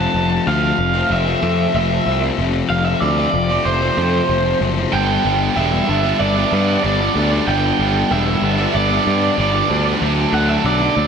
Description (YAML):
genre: post-rock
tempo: 94 BPM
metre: 4/4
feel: straight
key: unclear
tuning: A4 = 442 Hz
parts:
  - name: raw garage guitar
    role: melody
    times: 0.0-11.1 s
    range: C5 to A5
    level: -19 LUFS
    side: right 3 dB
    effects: overdrive, analog delay
  - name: fuzz guitar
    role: riff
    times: 0.0-11.0 s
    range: F2 to D4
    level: -21 LUFS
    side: left 9 dB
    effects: distortion
  - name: fuzz picked electric bass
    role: bass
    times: 0.0-11.1 s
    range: E1 to G2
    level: -19 LUFS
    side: equal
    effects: overdrive
  - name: tight distorted guitar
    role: riff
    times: 4.9-11.1 s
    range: G2 to D4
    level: -21 LUFS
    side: right 10 dB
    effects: distortion, slapback echo
room: moderate lush hall reverb, RT60 2.2 s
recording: big arena sound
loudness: -14 LUFS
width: side -6 dB against mid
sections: 0.0-11.1 A section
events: none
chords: 0.0 Fmaj7; 4.9 G; 10.0 D6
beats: 0.46 1.10 1.74 | 2.38 3.01 3.65 4.29 | 4.93 5.56 6.20 6.84 | 7.47 8.11 8.74 9.38 | 10.01 10.65